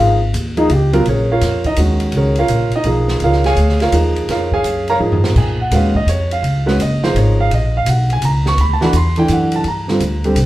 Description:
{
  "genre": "modal jazz",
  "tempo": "168 BPM",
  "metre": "3/4",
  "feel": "swing 65% on 8ths",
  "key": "Bb phrygian",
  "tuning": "A4 = 439 Hz",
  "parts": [
    { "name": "mellow trombone", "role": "second line", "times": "0.0-1.0 s", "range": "Eb4 to G4", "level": "-18 LUFS", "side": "left 3 dB", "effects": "none" },
    { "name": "warm grand piano", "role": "accompaniment", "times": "0.0-10.4 s", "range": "D3 to Db6", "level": "-16 LUFS", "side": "right 1 dB", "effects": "none" },
    { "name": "upright bass", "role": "bass", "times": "0.0-10.5 s", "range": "Gb1 to Bb2", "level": "-16 LUFS", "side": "equal", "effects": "none" },
    { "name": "open jazz drum kit", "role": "drums", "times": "0.3-10.5 s", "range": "crash cymbal, hi-hat, kick drum, ride cymbal, snare drum, toms", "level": "-24 LUFS", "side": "equal", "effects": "none" }
  ],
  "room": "wet club reverb, RT60 0.8 s",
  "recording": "heard from further back in the room",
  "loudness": "-13 LUFS",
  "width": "side -15 dB against mid",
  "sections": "0.0-1.1 A section; 1.1-9.7 A section",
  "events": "trombone solo 0.0-1.1; drum fill 5.0-5.4",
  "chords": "0.0 Dbadd9; 1.1 Bbm7; 8.6 D; 9.7 Gm7"
}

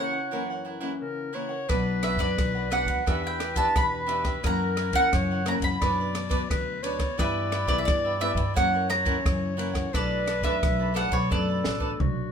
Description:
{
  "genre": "samba and choro",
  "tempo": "87 BPM",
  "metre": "4/4",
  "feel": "straight",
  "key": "B minor",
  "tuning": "A4 = 440 Hz",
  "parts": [
    { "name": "mandolin", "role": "melody", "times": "0.0-12.3 s", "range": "B4 to B5", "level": "-28 LUFS", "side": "right 2 dB", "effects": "none" },
    { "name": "breathy clarinet", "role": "second line", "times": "0.0-12.3 s", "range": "F#4 to D5", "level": "-32 LUFS", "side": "left 4 dB", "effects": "none" },
    { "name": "cavaquinho", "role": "accompaniment", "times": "0.0-11.9 s", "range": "D4 to F#5", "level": "-33 LUFS", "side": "right 3 dB", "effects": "none" },
    { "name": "nylon-string guitar", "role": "accompaniment", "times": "0.0-12.3 s", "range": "F#2 to G4", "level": "-35 LUFS", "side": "left 4 dB", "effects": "none" },
    { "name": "upright bass", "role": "bass", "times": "1.7-12.3 s", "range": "A1 to G2", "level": "-30 LUFS", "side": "left 1 dB", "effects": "none" },
    { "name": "compact cocktail drum kit", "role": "drums", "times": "1.7-12.2 s", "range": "kick drum, ride cymbal, rim click, snare drum, toms", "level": "-29 LUFS", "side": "equal", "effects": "none" }
  ],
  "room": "moderate studio reverb, RT60 0.6 s",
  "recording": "minimal, uncompressed stereo recording",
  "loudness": "-23 LUFS",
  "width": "side -7 dB against mid",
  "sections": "0.0-12.3 A section",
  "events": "drum fill 11.3-12.3",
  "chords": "0.0 F#7; 1.7 Bm; 3.1 Em7; 4.4 F#7; 5.8 Bmadd9/F#; 7.2 Em; 8.6 F#7; 9.9 Bm7"
}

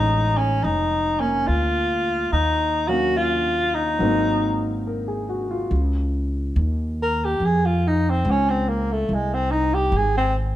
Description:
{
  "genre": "jazz ballad",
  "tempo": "71 BPM",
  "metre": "4/4",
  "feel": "swing 67% on 8ths",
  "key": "unclear",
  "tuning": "A4 = 439 Hz",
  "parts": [
    { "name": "breathy alto saxophone", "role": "melody", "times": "0.0-10.3 s", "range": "Ab3 to Bb4", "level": "-21 LUFS", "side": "equal", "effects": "none" },
    { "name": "warm baby grand piano", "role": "accompaniment", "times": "0.0-5.8 s", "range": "Gb3 to F5", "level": "-26 LUFS", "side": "left 1 dB", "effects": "none" },
    { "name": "upright bass", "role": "bass", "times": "0.0-10.6 s", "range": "F1 to F2", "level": "-23 LUFS", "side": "equal", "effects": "none" }
  ],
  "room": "moderate large studio reverb, RT60 1.3 s",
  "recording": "none",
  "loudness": "-19 LUFS",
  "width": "side -13 dB against mid",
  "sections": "0.0-5.7 A section; 5.7-10.6 B section",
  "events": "alto saxophone solo 5.7-10.6",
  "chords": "0.0 Bbm11; 2.3 Ebm7; 4.0 Ab9; 5.7 Dbadd9; 9.1 Ab"
}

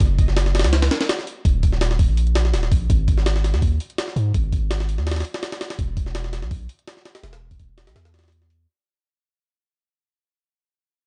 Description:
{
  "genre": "drum and bass, jungle",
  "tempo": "166 BPM",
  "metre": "4/4",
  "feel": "straight",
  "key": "G# minor",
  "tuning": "A4 = 440 Hz",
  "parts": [
    { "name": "long sustained 808-style bass", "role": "bass", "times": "0.0-8.7 s", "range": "D#1 to G#2", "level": "-23 LUFS", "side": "equal", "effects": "none" },
    { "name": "jungle sampler-style drum kit", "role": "drums", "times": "0.0-8.6 s", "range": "hi-hat, kick drum, snare drum", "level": "-24 LUFS", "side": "equal", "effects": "studio reverb" }
  ],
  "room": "little or no reverb",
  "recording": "dark, warm production, nothing above 10.3 kHz",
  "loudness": "-21 LUFS",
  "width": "mono",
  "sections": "0.0-2.9 A section; 2.9-8.7 B section",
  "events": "drop 0.0-2.9; fade-out 2.9-8.7; filter sweep on 808-style bass 2.9-8.7",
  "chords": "none"
}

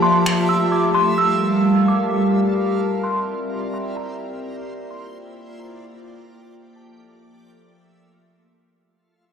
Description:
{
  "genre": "hip hop",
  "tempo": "129 BPM",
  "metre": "4/4",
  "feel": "half-time",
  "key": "F major",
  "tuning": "A4 = 440 Hz",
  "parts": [
    { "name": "dark detuned synth bell", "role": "melody", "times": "0.0-8.6 s", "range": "A5 to E6", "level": "-22 LUFS", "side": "equal", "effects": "chorus, phaser, low-pass filter, ping-pong delay" },
    { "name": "warbly tape-like pad", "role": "sustained chords", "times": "0.0-8.6 s", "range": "F3 to A5", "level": "-20 LUFS", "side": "equal", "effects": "chorus, built-in reverb, low-pass filter" },
    { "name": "backwards swelling texture", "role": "texture", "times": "0.0-8.6 s", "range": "G3 to E5", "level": "-30 LUFS", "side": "equal", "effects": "built-in reverb" }
  ],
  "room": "light reverb",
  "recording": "played on a big sound system in a bare room, large studio reverb",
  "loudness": "-17 LUFS",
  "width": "side -7 dB against mid",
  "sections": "0.0-8.6 A section",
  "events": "fade-out 0.0-8.6; filter sweep 0.0-8.6",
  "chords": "0.0 Fmaj7; 1.2 Gm7; 3.0 C7; 4.9 Bb6; 6.8 Fmaj7"
}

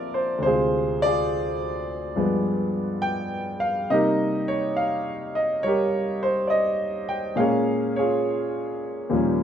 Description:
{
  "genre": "solo jazz",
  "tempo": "69 BPM",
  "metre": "4/4",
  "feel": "swing 68% on 8ths",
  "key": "unclear",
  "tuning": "A4 = 440 Hz",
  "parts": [
    { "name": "warm grand piano", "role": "solo", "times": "0.0-9.4 s", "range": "D2 to G5", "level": "-22 LUFS", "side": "equal", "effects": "none" }
  ],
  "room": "wet club reverb, RT60 0.8 s",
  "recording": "nothing above 10.4 kHz",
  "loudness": "-22 LUFS",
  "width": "side -9 dB against mid",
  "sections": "0.0-9.4 A section",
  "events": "none",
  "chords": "0.4 Dm7b5; 2.2 G7b9; 3.9 Cm7; 7.4 Bbm7"
}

